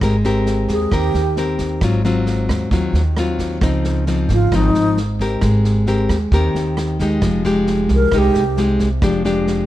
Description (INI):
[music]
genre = bossa nova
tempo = 133 BPM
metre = 4/4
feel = straight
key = Ab major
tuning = A4 = 440 Hz
[part]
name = nylon-string guitar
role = accompaniment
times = 0.0-9.7 s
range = Ab2 to Bb4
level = -18 LUFS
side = left 2 dB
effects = none
[part]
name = upright bass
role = bass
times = 0.0-9.7 s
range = F1 to Eb2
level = -19 LUFS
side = equal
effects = none
[part]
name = vintage drum kit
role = drums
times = 0.0-9.5 s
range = kick drum, rim click, snare drum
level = -24 LUFS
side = right 1 dB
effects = none
[part]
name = breathy wooden-headed alto flute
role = melody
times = 0.7-1.4, 4.3-5.0, 8.0-8.6 s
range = Eb4 to Bb4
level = -19 LUFS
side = right 1 dB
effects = none
[sound]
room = little or no reverb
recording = dark, warm production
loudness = -15 LUFS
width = side -14 dB against mid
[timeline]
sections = 0.0-9.7 A section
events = alto flute solo 0.0-9.7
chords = 0.0 Abmaj9; 1.8 Ab6; 3.6 Dbmaj9; 5.4 Abmaj9; 7.2 Fm9; 9.0 Fm69